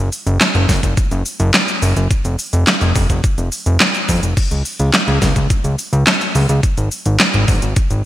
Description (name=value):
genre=synthwave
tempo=106 BPM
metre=4/4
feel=straight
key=F phrygian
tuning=A4 = 439 Hz
part: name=fat analog bass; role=bass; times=0.0-8.0 s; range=F1 to F2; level=-15 LUFS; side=equal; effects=sidechain pumping
part: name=pop drum kit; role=drums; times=0.1-8.0 s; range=cabasa, crash cymbal, handclaps, hi-hat, snare drum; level=-16 LUFS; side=equal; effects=gated reverb
part: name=electronic kick drum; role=drums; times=0.7-7.9 s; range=none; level=-16 LUFS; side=equal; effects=none
room=light reverb, digital ambience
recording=bright 1980s-style digital production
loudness=-13 LUFS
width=side -14 dB against mid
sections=0.0-8.1 A section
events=none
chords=none